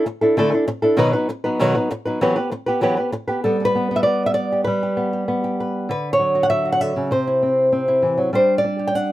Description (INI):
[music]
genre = flamenco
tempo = 196 BPM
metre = 4/4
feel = straight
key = unclear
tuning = A4 = 440 Hz
[part]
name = flamenco guitar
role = solo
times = 0.0-9.1 s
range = B2 to G5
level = -17 LUFS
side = equal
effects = none
[sound]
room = little or no reverb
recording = none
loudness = -17 LUFS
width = side -15 dB against mid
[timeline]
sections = 0.0-3.4 A section; 3.4-9.1 B section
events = none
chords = 0.0 Dsus2; 1.0 B; 2.2 Emadd9; 3.4 G; 5.9 D; 7.1 C; 8.3 G5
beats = 0.06 0.36 0.67 | 0.98 1.29 1.59 1.90 | 2.21 2.52 2.82 3.13 | 3.44 3.74 4.05 4.36 | 4.66 4.97 5.28 5.58 | 5.89 6.19 6.50 6.80 | 7.11 7.41 7.72 8.02 | 8.33 8.63 8.94